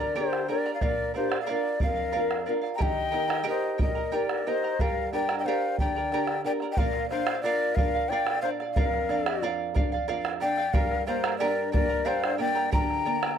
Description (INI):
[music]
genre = andean folk, Andean ensemble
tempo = 60 BPM (dotted quarters)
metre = 6/8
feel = straight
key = unclear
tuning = A4 = 440 Hz
[part]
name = breathy large quena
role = melody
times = 0.0-13.4 s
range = C5 to Bb5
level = -30 LUFS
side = equal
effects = none
[part]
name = hollow quena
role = second line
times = 0.0-13.4 s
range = G4 to G5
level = -32 LUFS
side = left 13 dB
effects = none
[part]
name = charango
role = accompaniment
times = 0.0-13.4 s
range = G4 to Bb5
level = -33 LUFS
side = right 6 dB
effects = none
[part]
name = nylon-string guitar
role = accompaniment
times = 0.0-13.4 s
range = F2 to Bb4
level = -32 LUFS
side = right 1 dB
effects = none
[part]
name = bombo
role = percussion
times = 0.3-13.4 s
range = none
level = -30 LUFS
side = right 2 dB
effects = none
[sound]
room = studio reverb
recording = dry, close 1970s-style studio recording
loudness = -24 LUFS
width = side -8 dB against mid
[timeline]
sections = 0.0-6.8 A section; 6.8-13.4 B section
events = none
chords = 0.0 Gm; 0.8 Bb; 2.8 Eb; 4.8 Gm; 6.8 Bb; 10.7 Gm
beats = | 0.82 1.82 | 2.81 3.81 | 4.80 5.79 | 6.78 7.77 | 8.77 9.76 | 10.75 11.74 | 12.73